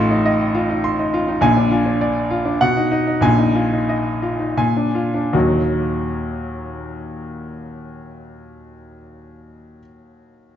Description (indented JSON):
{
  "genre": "classical, virtuoso piano study",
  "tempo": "78-105 BPM",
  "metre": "3/4",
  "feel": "rubato",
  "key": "Eb minor",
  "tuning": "A4 = 440 Hz",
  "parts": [
    { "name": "clear grand piano", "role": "solo", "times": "0.0-10.6 s", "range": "A1 to C6", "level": "-17 LUFS", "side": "equal", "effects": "none" }
  ],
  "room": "wet recital hall reverb, RT60 1.8 s",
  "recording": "dark, warm production, nothing above 7.6 kHz",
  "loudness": "-16 LUFS",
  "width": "side -10 dB against mid",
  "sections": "0.0-5.3 A section; 5.3-9.7 B section",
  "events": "slowing down 0.6-5.3",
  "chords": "0.0 F7/A; 1.4 Bb7; 2.6 B; 3.2 Bb7sus4; 4.6 Bb7; 5.3 Ebm"
}